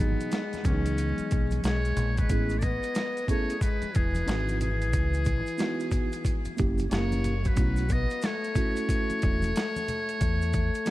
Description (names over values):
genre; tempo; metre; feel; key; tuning
hip hop, jazz-hop; 91 BPM; 4/4; swing 63% on 16ths; C# minor; A4 = 440 Hz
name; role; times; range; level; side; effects
trumpet with metal mute; melody; 0.0-10.9 s; B3 to D#5; -34 LUFS; equal; diffuse ambient delay
breathy trombone; second line; 0.0-10.9 s; E3 to B3; -34 LUFS; left 4 dB; none
mellow tine electric piano; accompaniment; 0.0-10.9 s; B2 to G#4; -34 LUFS; right 3 dB; medium stereo tremolo
deep dub fingered electric bass; bass; 0.0-10.7 s; E1 to E2; -28 LUFS; equal; none
boom bap sampler-style drum kit; drums; 0.2-10.9 s; hi-hat, kick drum, snare drum; -29 LUFS; equal; overdrive
maracas and congas; percussion; 0.2-10.9 s; none; -41 LUFS; left 1 dB; none
room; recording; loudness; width
light reverb, small room ambience; vinyl crackle; -25 LUFS; side -16 dB against mid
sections
0.0-2.3 A section; 2.3-10.9 B section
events
none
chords
0.0 G#m7; 0.7 C#m11; 2.3 Amaj9; 4.3 G#7b13; 4.9 C#m11; 6.9 F#7b9; 7.6 B9sus4; 10.2 N.C.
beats
0.32 0.98 1.64 | 2.30 2.96 3.62 4.28 | 4.93 5.59 6.25 6.91 | 7.57 8.23 8.89 9.55 | 10.21 10.87